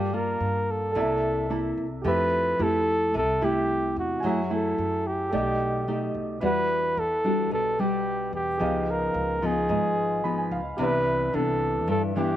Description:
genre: bossa nova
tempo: 110 BPM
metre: 4/4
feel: straight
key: E minor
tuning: A4 = 440 Hz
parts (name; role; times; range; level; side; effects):
- mellow flugelhorn; melody; 0.0-12.4 s; F#4 to B4; -26 LUFS; equal; slapback echo
- nylon-string guitar; accompaniment; 0.0-12.4 s; G2 to A4; -28 LUFS; left 1 dB; none
- warm concert grand piano; accompaniment; 0.0-12.4 s; B3 to B5; -35 LUFS; right 3 dB; none
- upright bass; bass; 0.0-12.4 s; G#1 to G2; -34 LUFS; right 1 dB; none
room: light reverb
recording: recorded outdoors, with no room sound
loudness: -23 LUFS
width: side -12 dB against mid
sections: 0.0-12.4 A section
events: grand piano fill 10.0-10.8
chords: 0.0 Gm9; 1.0 C13; 2.0 Fmaj9; 4.2 F#m9; 5.3 B7alt; 6.4 Em9; 8.6 C#9; 10.8 Cmaj9

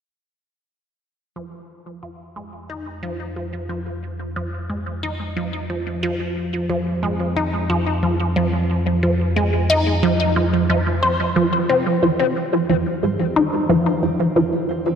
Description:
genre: ambient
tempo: 90 BPM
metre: 4/4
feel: straight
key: F minor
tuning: A4 = 440 Hz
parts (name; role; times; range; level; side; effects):
- resonant blip pluck; riff; 1.4-14.6 s; F3 to C5; -19 LUFS; equal; phaser, tape echo
- analog drone; bass; 2.7-15.0 s; F2; -24 LUFS; equal; chorus
- concert harp; arpeggios; 12.0-15.0 s; F3 to C5; -34 LUFS; equal; auto-pan, tape echo
room: wet lush hall reverb, RT60 2.9 s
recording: dreamy mix soaked in reverb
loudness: -18 LUFS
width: side -7 dB against mid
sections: 1.4-12.0 A section; 12.0-15.0 B section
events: fade-in on synth arpeggio sound 1.4-12.0; fade-in on synth drone 1.4-12.0; filter sweep on synth arpeggio sound 12.0-15.0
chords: 1.4 F7(no3)

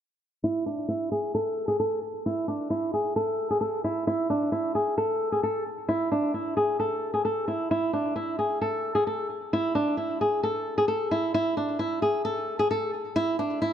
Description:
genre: hip hop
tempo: 132 BPM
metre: 4/4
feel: half-time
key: unclear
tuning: A4 = 440 Hz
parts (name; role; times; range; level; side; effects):
- flamenco guitar; melody; 0.4-13.7 s; D4 to A4; -25 LUFS; equal; low-pass filter, digital delay
room: moderate concert hall reverb, RT60 2.1 s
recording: none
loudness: -25 LUFS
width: side -9 dB against mid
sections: 0.4-13.7 A section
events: filter sweep on nylon-string guitar 0.4-13.7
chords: none

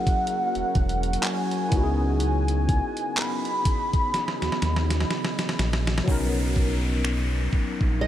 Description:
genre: contemporary R&B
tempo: 62 BPM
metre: 4/4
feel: swing 58% on 16ths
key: C# dorian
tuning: A4 = 440 Hz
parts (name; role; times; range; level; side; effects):
- warm velvety synth lead; melody; 0.0-5.6 s; F#5 to B5; -29 LUFS; equal; chorus, tape echo
- barky tine electric piano; accompaniment; 0.0-8.1 s; F#3 to A#4; -31 LUFS; left 3 dB; analog chorus
- deep dark ambient pad; sustained chords; 0.0-8.1 s; C#3 to D#5; -32 LUFS; right 1 dB; chorus, built-in reverb, sidechain pumping
- detuned 8-bit digital drum machine; drums; 0.1-8.0 s; finger snaps, handclaps, hi-hat, kick drum, snare drum; -26 LUFS; equal; none
- round analog bass; bass; 0.6-8.1 s; E1 to D#2; -25 LUFS; equal; none
- downlifter; sound effects; 6.1-8.1 s; none; -34 LUFS; left 1 dB; none
- nylon-string guitar; arpeggios; 8.0-8.1 s; D#5; -24 LUFS; right 3 dB; analog chorus
room: moderate huge ambient reverb, RT60 4.9 s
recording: dreamy mix soaked in reverb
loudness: -22 LUFS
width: side -12 dB against mid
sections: 0.0-6.1 A section; 6.1-8.1 B section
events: drum fill 4.1-6.1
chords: 0.0 F#7; 1.7 C#m9; 6.1 Bmaj7

